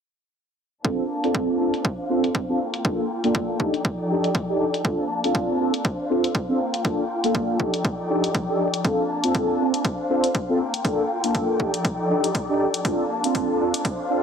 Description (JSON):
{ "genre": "filtered disco house", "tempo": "120 BPM", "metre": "4/4", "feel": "swing 56% on 16ths", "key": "Bb major", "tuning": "A4 = 440 Hz", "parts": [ { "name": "mellow synth brass", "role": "accompaniment", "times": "0.8-14.2 s", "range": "Bb3 to A4", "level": "-23 LUFS", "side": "equal", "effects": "chorus, phaser, sidechain pumping, low-pass filter" }, { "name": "warm studio string section", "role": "sustained chords", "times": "0.8-14.2 s", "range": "F3 to A5", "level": "-27 LUFS", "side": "left 1 dB", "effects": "sidechain pumping, low-pass filter" }, { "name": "electronic hi-hat", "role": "drums", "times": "0.8-14.0 s", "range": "none", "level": "-30 LUFS", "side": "left 3 dB", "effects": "overdrive, sidechain pumping on hats, low-pass filter on hats" }, { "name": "electronic kick drum", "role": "drums", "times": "0.8-14.0 s", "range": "none", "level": "-25 LUFS", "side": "equal", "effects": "high-pass filter on kick" } ], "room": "moderate echo chamber reverb, RT60 2.2 s", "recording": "heavily compressed radio sound, multiband compression", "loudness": "-21 LUFS", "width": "side -7 dB against mid", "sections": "0.8-14.2 A section", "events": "filter sweep 0.8-14.2", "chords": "0.8 Bbmaj7; 1.9 Dm7; 2.6 Gm7; 3.6 F13; 4.8 Bbmaj7; 5.8 Dm7; 6.6 Gm7; 7.6 F13; 8.8 Bbmaj7; 9.8 Dm7; 10.6 Gm7; 11.6 F13; 12.8 Bbmaj7" }